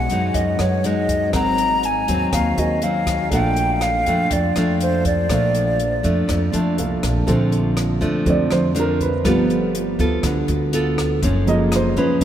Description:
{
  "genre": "bossa nova",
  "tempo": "121 BPM",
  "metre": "4/4",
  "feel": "straight",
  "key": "Bb major",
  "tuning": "A4 = 440 Hz",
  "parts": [
    { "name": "mellow concert flute", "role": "melody", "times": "0.0-6.8 s", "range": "C5 to Bb5", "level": "-22 LUFS", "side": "equal", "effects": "none" },
    { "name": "nylon-string guitar", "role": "accompaniment", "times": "0.0-12.2 s", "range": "F2 to A4", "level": "-22 LUFS", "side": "equal", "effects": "none" },
    { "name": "warm baby grand piano", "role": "accompaniment", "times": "0.0-12.2 s", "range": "D3 to A5", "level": "-24 LUFS", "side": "right 2 dB", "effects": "none" },
    { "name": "upright bass", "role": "bass", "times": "0.0-12.2 s", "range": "Gb1 to F#2", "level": "-22 LUFS", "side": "equal", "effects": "none" },
    { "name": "compact cocktail drum kit", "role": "drums", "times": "0.1-12.2 s", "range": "hi-hat, kick drum, rim click", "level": "-28 LUFS", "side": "left 1 dB", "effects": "none" }
  ],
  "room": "wet cathedral reverb, RT60 6.0 s",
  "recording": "in a vast, echoing space",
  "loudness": "-17 LUFS",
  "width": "side -10 dB against mid",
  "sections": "0.0-7.3 A section; 7.3-12.2 B section",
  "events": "grand piano fill 6.3-7.3; grand piano solo 7.3-12.2",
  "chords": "0.0 B6; 1.3 Ab9; 3.3 Bbmaj7; 9.3 G9; 11.2 Gbmaj7",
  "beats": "0.35 0.84 | 1.34 1.83 2.33 2.83 | 3.32 3.82 4.31 4.81 | 5.30 5.79 6.29 6.78 | 7.28 7.77 8.27 8.76 | 9.26 9.75 10.24 10.74 | 11.23 11.73 12.22"
}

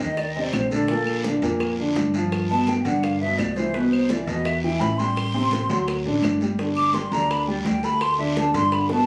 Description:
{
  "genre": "Afro-Cuban jazz",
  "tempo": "169 BPM",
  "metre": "4/4",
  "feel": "straight",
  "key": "G major",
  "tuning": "A4 = 441 Hz",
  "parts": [
    { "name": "breathy hollow jazz flute", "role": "second line", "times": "0.0-9.1 s", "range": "A4 to D6", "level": "-27 LUFS", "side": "equal", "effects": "none" },
    { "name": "warm baby grand piano", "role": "accompaniment", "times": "0.0-9.1 s", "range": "Bb2 to A4", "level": "-26 LUFS", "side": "equal", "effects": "none" },
    { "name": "upright bass", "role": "bass", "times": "0.0-9.0 s", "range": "G1 to G2", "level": "-31 LUFS", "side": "equal", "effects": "none" },
    { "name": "bongos", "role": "percussion", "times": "0.0-9.0 s", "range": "none", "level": "-36 LUFS", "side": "equal", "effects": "none" },
    { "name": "congas", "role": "percussion", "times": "0.0-9.1 s", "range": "none", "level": "-33 LUFS", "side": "equal", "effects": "none" },
    { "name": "guiro", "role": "percussion", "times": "0.0-9.1 s", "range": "none", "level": "-38 LUFS", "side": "equal", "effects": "none" },
    { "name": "claves", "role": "percussion", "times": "0.2-8.9 s", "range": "none", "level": "-39 LUFS", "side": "equal", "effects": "none" }
  ],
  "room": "light reverb",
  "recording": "recorded on a phone in the room, studio ambience, compression",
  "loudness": "-23 LUFS",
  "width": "mono",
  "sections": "0.0-9.1 A section",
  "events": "flute solo 0.0-9.1; drum fill 8.9",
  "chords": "0.0 Abadd9 (rootless); 0.9 Bbmaj7; 2.3 G7; 3.7 Cmaj7; 5.2 Am7; 5.9 D; 6.6 G5",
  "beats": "0.18 0.54 | 0.89 1.25 1.60 1.96 | 2.32 2.67 3.03 3.39 | 3.74 4.10 4.45 4.81 | 5.17 5.52 5.88 6.23 | 6.59 6.94 7.30 7.65 | 8.01 8.36 8.72"
}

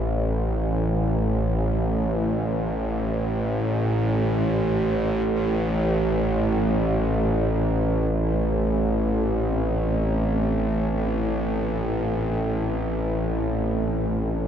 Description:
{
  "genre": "dark ambient drone",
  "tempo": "free time",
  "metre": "none",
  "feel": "none",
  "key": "A harmonic minor",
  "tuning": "A4 = 440 Hz",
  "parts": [
    { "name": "bronze singing bowl", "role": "arpeggios", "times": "0.0-14.5 s", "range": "G#2 to E4", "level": "-35 LUFS", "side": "left 2 dB", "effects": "none" },
    { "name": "bowed-like drone", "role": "drone", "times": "0.0-14.5 s", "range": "A1", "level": "-22 LUFS", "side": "equal", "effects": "built-in reverb" }
  ],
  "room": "wet huge ambient reverb, RT60 7.7 s",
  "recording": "worn, warbling old tape, cassette tape, warbly pitch drift",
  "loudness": "-21 LUFS",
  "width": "side -8 dB against mid",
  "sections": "0.0-14.5 A section",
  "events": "none",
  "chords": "0.0 A5",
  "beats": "free time"
}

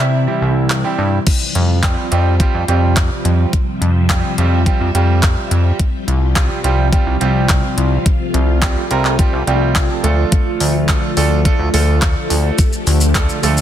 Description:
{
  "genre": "dance-pop",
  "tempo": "106 BPM",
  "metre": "4/4",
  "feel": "straight",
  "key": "F major",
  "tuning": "A4 = 440 Hz",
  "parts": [
    { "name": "glassy wavetable pluck", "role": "melody", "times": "0.0-0.9 s", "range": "E5", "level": "-25 LUFS", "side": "right 1 dB", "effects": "chorus, tape echo" },
    { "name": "clear concert grand piano", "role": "accompaniment", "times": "0.0-13.6 s", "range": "G3 to A5", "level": "-21 LUFS", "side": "right 5 dB", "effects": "sidechain pumping" },
    { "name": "phased string machine", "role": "sustained chords", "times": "0.0-13.6 s", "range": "C3 to E5", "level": "-22 LUFS", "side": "left 1 dB", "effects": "ensemble chorus, phaser, sidechain pumping" },
    { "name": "chorused synth bass", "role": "bass", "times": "0.0-13.6 s", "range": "C2 to C3", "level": "-15 LUFS", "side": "equal", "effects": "sidechain pumping" },
    { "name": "pop drum kit", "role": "drums", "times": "0.7-13.6 s", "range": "crash cymbal, handclaps, hi-hat, kick drum, shaker", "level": "-17 LUFS", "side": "equal", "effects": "overdrive" }
  ],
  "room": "little or no reverb",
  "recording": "dense, heavily limited modern master",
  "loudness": "-13 LUFS",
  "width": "side -10 dB against mid",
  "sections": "0.0-1.3 A section; 1.3-13.6 B section",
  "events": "grand piano fill 9.5-10.3",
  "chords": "0.0 C; 1.3 Fsus2; 5.8 Csus4; 10.0 Dm",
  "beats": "0.14 0.70 | 1.27 1.83 2.40 2.96 | 3.53 4.10 4.66 5.23 | 5.79 6.36 6.93 7.49 | 8.06 8.62 9.19 9.76 | 10.32 10.89 11.46 12.02 | 12.59 13.15"
}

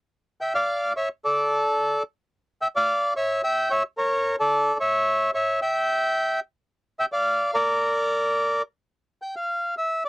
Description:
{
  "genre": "tango",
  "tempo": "109 BPM",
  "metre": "4/4",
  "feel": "rubato",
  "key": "unclear",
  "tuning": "A4 = 435 Hz",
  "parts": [
    { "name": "bandoneon", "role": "solo", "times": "0.4-10.1 s", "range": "A4 to G5", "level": "-21 LUFS", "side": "equal", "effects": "none" }
  ],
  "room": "little or no reverb",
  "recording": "dry, close 1970s-style studio recording",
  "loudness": "-22 LUFS",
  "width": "side -23 dB against mid",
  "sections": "0.0-8.9 A section; 8.9-10.1 A section",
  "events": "none",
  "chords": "0.0 A5; 2.3 A7b9b13 (rootless); 4.5 A5; 5.6 N.C.; 6.7 Bb; 8.9 N.C.",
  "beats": "| 0.12 0.68 1.23 1.78 | 2.33 2.88 3.43 3.98 | 4.52 5.07 5.62 6.16 | 6.71 7.26 7.82 8.38 | 8.94 9.50 10.05"
}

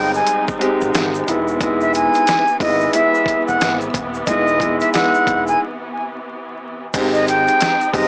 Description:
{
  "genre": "hip hop, boom-bap hip-hop",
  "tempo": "90 BPM",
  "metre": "4/4",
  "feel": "swing 61% on 16ths",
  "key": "unclear",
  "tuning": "A4 = 436 Hz",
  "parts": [
    { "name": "bright reedy silver concert flute", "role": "melody", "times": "0.0-8.1 s", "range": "Eb5 to Ab5", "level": "-20 LUFS", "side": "equal", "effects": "high-pass filter, low-pass filter, analog delay" },
    { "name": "warm upright piano", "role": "accompaniment", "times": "0.0-8.1 s", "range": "G3 to G4", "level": "-22 LUFS", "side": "equal", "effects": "cassette tape, high-pass filter, low-pass filter" },
    { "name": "warm studio string section", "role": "sustained chords", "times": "0.0-8.1 s", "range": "C3 to Eb4", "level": "-29 LUFS", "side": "equal", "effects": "high-pass filter, low-pass filter" },
    { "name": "mellow fretless electric bass", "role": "bass", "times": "0.0-8.1 s", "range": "D#1 to Ab1", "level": "-32 LUFS", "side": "equal", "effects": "subtle chorus" },
    { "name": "egg shaker", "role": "percussion", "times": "0.1-8.1 s", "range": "none", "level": "-42 LUFS", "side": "equal", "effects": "none" },
    { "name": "boom bap sampler-style drum kit", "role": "drums", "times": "0.3-8.1 s", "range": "crash cymbal, hi-hat, kick drum, snare drum", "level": "-25 LUFS", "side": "equal", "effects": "none" }
  ],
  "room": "light reverb",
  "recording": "dry, gritty hardware recording, vinyl crackle, small speaker sound",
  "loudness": "-17 LUFS",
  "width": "mono",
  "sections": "0.0-6.9 A section; 6.9-8.1 B section",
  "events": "break 5.6-6.9",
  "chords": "0.0 Abmaj7; 1.3 Emaj7; 6.9 Abmaj7",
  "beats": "0.27 0.94 | 1.61 2.27 2.94 3.61 | 4.27 4.94 5.61 6.27 | 6.94 7.61"
}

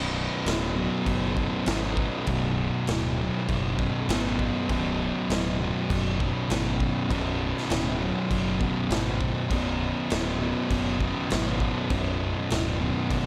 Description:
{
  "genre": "stoner and doom metal",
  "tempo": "100 BPM",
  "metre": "4/4",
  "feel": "straight",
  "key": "B dorian",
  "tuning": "A4 = 439 Hz",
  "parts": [
    { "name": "thick fuzz guitar", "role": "riff", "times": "0.0-13.3 s", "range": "B1 to B2", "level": "-32 LUFS", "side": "equal", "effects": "distortion" },
    { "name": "thick fuzz guitar", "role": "riff", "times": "0.0-13.3 s", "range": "B1 to B2", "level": "-32 LUFS", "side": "equal", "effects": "distortion" },
    { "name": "growling picked electric bass", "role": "bass", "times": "0.0-13.3 s", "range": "B0 to G#1", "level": "-34 LUFS", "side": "equal", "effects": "overdrive" },
    { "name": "raw garage drum kit", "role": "drums", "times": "0.5-13.2 s", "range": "crash cymbal, kick drum, snare drum", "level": "-33 LUFS", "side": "equal", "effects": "none" }
  ],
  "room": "studio reverb",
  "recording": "none",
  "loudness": "-27 LUFS",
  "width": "mono",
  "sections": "0.0-13.3 A section",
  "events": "none",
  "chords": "0.0 Bm",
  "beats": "0.47 1.07 1.68 | 2.28 2.89 3.49 4.09 | 4.70 5.30 5.90 6.50 | 7.11 7.71 8.31 8.91 | 9.51 10.11 10.71 11.31 | 11.91 12.51 13.11"
}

